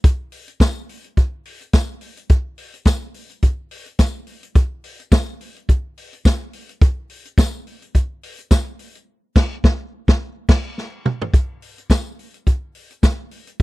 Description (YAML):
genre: disco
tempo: 106 BPM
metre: 4/4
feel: swing 56% on 16ths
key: none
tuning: none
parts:
  - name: vintage drum kit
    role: drums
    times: 0.0-13.6 s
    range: crash cymbal, hi-hat, kick drum, snare drum, toms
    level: -14 LUFS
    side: equal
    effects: none
  - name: tambourine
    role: percussion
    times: 0.6-13.2 s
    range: none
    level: -34 LUFS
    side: left 6 dB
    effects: none
room: studio reverb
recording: dry, close 1970s-style studio recording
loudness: -17 LUFS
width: side -21 dB against mid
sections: 0.0-11.3 A section; 11.3-13.6 B section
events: band accent 9.1-11.3; drum fill 10.8-11.3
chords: none